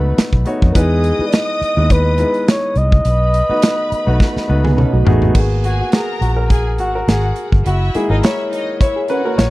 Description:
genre	lush 1970s-style soul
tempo	104 BPM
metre	4/4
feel	swing 54% on 16ths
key	G# minor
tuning	A4 = 437 Hz
part	breathy flugelhorn	melody	0.0-5.1 s	G#4 to D#5	-19 LUFS	equal	none
part	warm symphonic string section	second line	0.0-9.5 s	D#4 to D#6	-27 LUFS	left 1 dB	none
part	warm grand piano	accompaniment	0.0-9.5 s	G#3 to C#5	-20 LUFS	left 1 dB	none
part	vintage muted fingered electric bass	bass	0.0-9.5 s	F#1 to E#2	-16 LUFS	equal	none
part	modern studio drum kit	drums	0.2-9.5 s	crash cymbal, hi-hat, kick drum, snare drum, toms	-14 LUFS	equal	none
part	electric guitar through a small old amp	riff	4.6-5.3, 9.0-9.5 s	A3 to A#4	-21 LUFS	right 5 dB	lush chorus
room	studio reverb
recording	dry, close 1970s-style studio recording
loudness	-13 LUFS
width	side -18 dB against mid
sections	0.0-5.4 A section; 5.4-9.5 B section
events	drum fill 4.2-5.4; grand piano solo 5.4-9.5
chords	0.0 B7; 0.8 Emaj7; 3.1 B7; 5.4 G#m7; 7.7 F#7

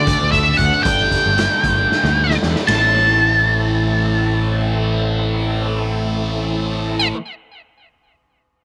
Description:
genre	psychedelic rock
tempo	231 BPM (eighths)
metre	7/8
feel	straight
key	A dorian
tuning	A4 = 438 Hz
part	octave-fuzz lead guitar	melody	0.0-7.1 s	D5 to A5	-19 LUFS	equal	distortion, tape echo
part	bright tonewheel organ	sustained chords	0.0-7.1 s	A3 to A4	-30 LUFS	equal	slow rotary speaker, overdrive, chorus vibrato
part	thick fuzz guitar	riff	0.0-7.2 s	G2 to D4	-25 LUFS	equal	distortion, phaser
part	picked electric bass	bass	0.0-7.1 s	G1 to D3	-22 LUFS	equal	none
part	raw garage drum kit	drums	0.1-2.8 s	hi-hat, kick drum, ride cymbal, snare drum	-25 LUFS	equal	none
room	light reverb, small room ambience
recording	none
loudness	-17 LUFS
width	mono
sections	0.0-2.7 A section; 2.7-6.3 B section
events	drum fill 1.9-2.7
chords	0.0 D; 0.8 Gsus2; 2.7 Am

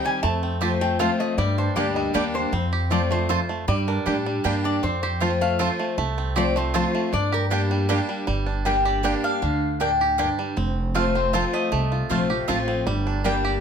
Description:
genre	bluegrass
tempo	157 BPM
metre	3/4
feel	straight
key	G minor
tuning	A4 = 440 Hz
part	lap resonator guitar	second line	0.0-7.4 s	Bb4 to A5	-28 LUFS	left 3 dB	none
part	picked steel-string acoustic guitar	accompaniment	0.0-13.6 s	F2 to G4	-26 LUFS	left 3 dB	none
part	bluegrass banjo	arpeggios	0.0-13.6 s	G3 to G4	-29 LUFS	right 6 dB	none
part	upright bass	bass	0.2-13.6 s	F1 to A2	-26 LUFS	equal	none
part	mandolin	stabs	0.6-13.3 s	Bb3 to A5	-28 LUFS	right 6 dB	none
part	mandolin	melody	8.7-13.6 s	C5 to G5	-25 LUFS	left 2 dB	none
room	light reverb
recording	close, detailed microphones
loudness	-20 LUFS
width	side -7 dB against mid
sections	0.0-8.3 A section; 8.3-13.6 A section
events	resonator guitar played with a steel bar solo 0.0-8.3; mandolin solo 8.3-13.6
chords	0.2 F; 1.4 Gm; 2.5 F; 3.7 Gm; 4.8 F; 7.1 Gm; 10.6 F; 12.9 Gm

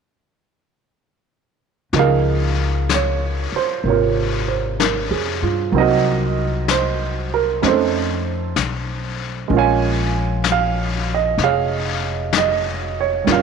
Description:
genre	jazz ballad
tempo	64 BPM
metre	4/4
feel	swing 66% on 8ths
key	Db major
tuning	A4 = 440 Hz
part	warm baby grand piano	accompaniment	1.9-13.4 s	C3 to Ab5	-19 LUFS	right 10 dB	none
part	upright bass	bass	1.9-13.4 s	F1 to G2	-22 LUFS	left 3 dB	none
part	vintage brush drum kit	drums	1.9-13.4 s	brushed snare drum, hi-hat, snare drum	-24 LUFS	left 11 dB	none
room	light reverb, small room reverb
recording	1960s-style stereo with parts hard left and right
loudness	-17 LUFS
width	side -6 dB against mid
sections	1.9-13.4 A section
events	none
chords	1.9 Db6; 5.7 Cm7b5; 7.6 F7b13; 9.5 Bbm7

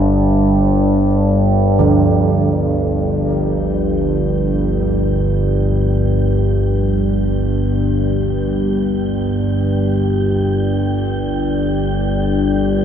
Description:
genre	dark ambient drone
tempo	free time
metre	none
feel	none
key	unclear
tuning	A4 = 438 Hz
part	dark analog pad	sustained chords	0.0-12.8 s	G3 to D5	-23 LUFS	left 1 dB	lush chorus
part	overtone-sweeping drone	drone	0.0-12.8 s	G1 to G2	-15 LUFS	equal	chorus, built-in reverb
part	old church bells	arpeggios	1.8-7.8 s	D3	-22 LUFS	right 3 dB	diffuse ambient delay
part	wind-like tuned noise texture	texture	3.1-12.8 s	G5	-34 LUFS	right 2 dB	built-in reverb
room	wet huge ambient reverb, RT60 7.2 s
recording	dark, warm production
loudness	-14 LUFS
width	side -8 dB against mid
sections	0.0-2.5 A section; 2.5-12.8 B section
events	fade-in on synth texture 2.5-12.8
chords	0.0 G5

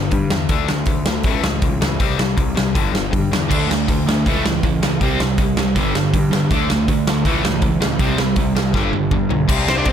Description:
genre	punk rock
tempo	160 BPM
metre	4/4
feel	straight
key	unclear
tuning	A4 = 440 Hz
part	distorted electric guitar	riff	0.0-9.9 s	G2 to D4	-22 LUFS	left 11 dB	distortion
part	fuzz picked electric bass	bass	0.0-9.9 s	G1 to G2	-22 LUFS	equal	overdrive
part	big rock drum kit	drums	0.1-9.9 s	crash cymbal, hi-hat, kick drum, snare drum, toms	-20 LUFS	equal	none
part	sludgy distorted guitar	riff	3.5-9.5 s	G2 to D4	-21 LUFS	right 10 dB	overdrive
part	high-gain lead guitar	melody	9.7-9.9 s	C4 to D5	-18 LUFS	equal	distortion
room	light reverb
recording	none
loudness	-15 LUFS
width	side -8 dB against mid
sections	0.0-9.5 A section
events	drum fill 8.8-9.5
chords	0.0 G5; 0.5 D5; 1.3 A/C#; 2.0 C5; 2.8 G5; 3.5 D5; 4.3 A/C#; 5.0 C5; 5.8 G5; 6.5 D5; 7.3 A/C#; 8.0 C5; 8.8 G

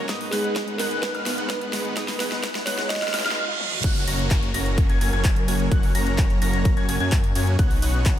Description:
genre	EDM, festival progressive house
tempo	128 BPM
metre	4/4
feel	straight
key	F# major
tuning	A4 = 440 Hz
part	bell-like FM electric piano	melody	0.0-3.3 s	G#4 to D#5	-30 LUFS	right 2 dB	chorus, tremolo, cassette tape, ping-pong delay
part	picked steel-string acoustic guitar	accompaniment	0.0-2.1 s	G#2 to B4	-36 LUFS	right 2 dB	none
part	muted studio string section	sustained chords	0.0-8.2 s	G#2 to A#4	-32 LUFS	right 1 dB	vintage 12-bit sampler grit, sidechain pumping
part	clear concert grand piano	arpeggios	0.0-8.2 s	D#6 to A#6	-31 LUFS	left 3 dB	analog chorus, sidechain pumping, ping-pong delay
part	dense compressed supersaw	riff	0.0-8.2 s	G#3 to A#5	-30 LUFS	equal	sidechain pumping, ping-pong delay
part	riser, reverse cymbal and downlifter	sound effects	1.0-7.6 s	none	-33 LUFS	right 3 dB	none
part	big-room dance drum kit	drums	0.1-8.2 s	crash cymbal, handclaps, hi-hat, ride cymbal, snare drum, toms	-29 LUFS	equal	none
part	electronic kick drum	drums	0.1-8.2 s	none	-21 LUFS	equal	high-pass filter on kick, high-pass filter on room
part	wide detuned saw bass	bass	3.8-8.2 s	F#1 to F#2	-25 LUFS	equal	chorus, sidechain pumping
room	moderate plate reverb, RT60 2.0 s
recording	dreamy mix soaked in reverb, high-pass filter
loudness	-20 LUFS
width	side -11 dB against mid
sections	0.0-3.8 A section; 3.8-8.2 B section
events	build-up 0.0-3.8; drum fill 0.0-3.4, 3.6; filter sweep on grand piano 0.0-3.8; filter sweep 0.0-3.8; reverse cymbal 2.9-3.8; drop 3.8-8.2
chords	0.1 G#m; 3.8 F#; 7.6 Badd9

